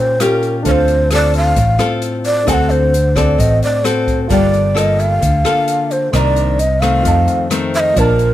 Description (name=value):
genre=bossa nova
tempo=131 BPM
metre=4/4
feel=straight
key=unclear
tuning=A4 = 439 Hz
part: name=breathy mellow long shakuhachi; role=melody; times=0.0-8.3 s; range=Bb4 to Ab5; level=-16 LUFS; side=right 1 dB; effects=plate reverb
part: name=nylon-string guitar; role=accompaniment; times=0.0-8.3 s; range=F2 to A4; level=-17 LUFS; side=left 3 dB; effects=none
part: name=warm baby grand piano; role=accompaniment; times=0.0-8.3 s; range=Bb3 to Bb5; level=-26 LUFS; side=right 4 dB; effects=none
part: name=open jazz drum kit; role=drums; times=0.2-8.3 s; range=hi-hat, kick drum, rim click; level=-22 LUFS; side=equal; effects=none
part: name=fingered electric bass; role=bass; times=0.7-8.3 s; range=G1 to F2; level=-16 LUFS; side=right 1 dB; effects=none
room=light reverb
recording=close, detailed microphones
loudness=-12 LUFS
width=side -13 dB against mid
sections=0.0-8.3 A section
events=none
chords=0.0 Eb9; 0.7 Dm7; 2.5 D7; 4.3 Gm9; 6.1 Cm9; 7.0 F7